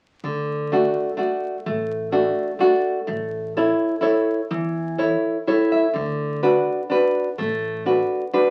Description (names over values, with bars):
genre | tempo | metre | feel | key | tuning
italian folk, Italian serenade | 126 BPM | 3/4 | straight | D major | A4 = 440 Hz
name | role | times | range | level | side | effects
nylon-string guitar | accompaniment | 0.2-8.5 s | D3 to E5 | -22 LUFS | equal | none
upright bass | bass | 0.2-8.0 s | A1 to E2 | -35 LUFS | equal | none
room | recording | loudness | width
wet studio reverb, RT60 0.6 s | very old 78 rpm record, vinyl crackle | -22 LUFS | mono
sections
0.2-8.5 A section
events
nylon-string guitar fill 5.2-5.9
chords
0.2 D; 3.1 A; 5.9 D6